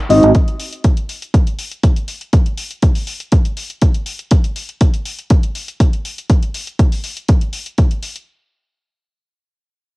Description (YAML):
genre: filtered disco house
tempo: 121 BPM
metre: 4/4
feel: straight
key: none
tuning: none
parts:
  - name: electronic hi-hat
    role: drums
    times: 0.1-8.3 s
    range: none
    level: -28 LUFS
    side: left 2 dB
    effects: overdrive, sidechain pumping on hats, studio ambience, cassette tape
  - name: electronic kick drum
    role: drums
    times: 0.3-7.9 s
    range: none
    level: -12 LUFS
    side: equal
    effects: overdrive, studio ambience, cassette tape
room: little or no reverb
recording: home recording on cassette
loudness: -14 LUFS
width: side -21 dB against mid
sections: 0.0-8.3 A section; 8.3-10.0 B section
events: none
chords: none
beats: | 0.34 0.84 1.34 1.83 | 2.33 2.83 3.32 3.82 | 4.31 4.81 5.30 5.80 | 6.30 6.79 7.29 7.78